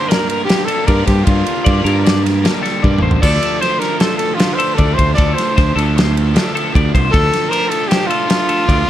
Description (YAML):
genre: math rock and midwest emo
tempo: 154 BPM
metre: 5/4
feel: straight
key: unclear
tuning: A4 = 441 Hz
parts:
  - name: clear trumpet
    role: melody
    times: 0.0-8.9 s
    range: F4 to D5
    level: -18 LUFS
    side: equal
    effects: none
  - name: twelve-string electric guitar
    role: arpeggios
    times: 0.0-8.9 s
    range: A4 to D5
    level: -22 LUFS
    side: left 5 dB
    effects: wide subtle chorus
  - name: overdriven electric guitar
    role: riff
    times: 0.0-8.9 s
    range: G2 to D4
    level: -21 LUFS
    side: right 1 dB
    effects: none
  - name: loose indie drum kit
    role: drums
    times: 0.1-8.8 s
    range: crash cymbal, kick drum, ride cymbal, snare drum, toms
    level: -17 LUFS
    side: equal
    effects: none
  - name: growling fingered electric bass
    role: bass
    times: 0.9-8.8 s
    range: A1 to G2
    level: -15 LUFS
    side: equal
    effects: overdrive
room: light reverb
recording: none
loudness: -12 LUFS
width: side -12 dB against mid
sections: 0.0-8.9 A section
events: drum fill 2.8-3.2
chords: 0.0 Gm7; 3.2 Dm7